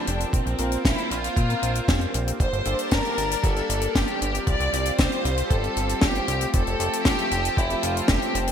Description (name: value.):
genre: italo disco.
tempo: 116 BPM.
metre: 4/4.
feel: straight.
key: G minor.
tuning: A4 = 441 Hz.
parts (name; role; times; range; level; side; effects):
warm studio violin section; melody; 0.0-8.5 s; C4 to D5; -27 LUFS; left 1 dB; ping-pong delay.
lush unison pad; sustained chords; 0.0-8.5 s; F3 to A5; -31 LUFS; right 2 dB; chorus.
bright tine electric piano; stabs; 0.0-8.5 s; G3 to Bb4; -33 LUFS; left 3 dB; lush chorus.
chorused synth bass; bass; 0.1-8.5 s; F1 to Bb2; -27 LUFS; equal; none.
tight funk drum kit; drums; 0.1-8.5 s; hi-hat, snare drum; -26 LUFS; left 2 dB; gated reverb.
electronic kick drum; drums; 0.3-8.2 s; none; -24 LUFS; right 1 dB; none.
room: light reverb, small room ambience.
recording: bright 1980s-style digital production.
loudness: -21 LUFS.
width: side -8 dB against mid.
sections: 0.0-8.5 A section.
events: none.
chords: 0.3 Bbsus2; 2.4 Gmadd9; 4.5 Csus4; 6.5 Fadd9.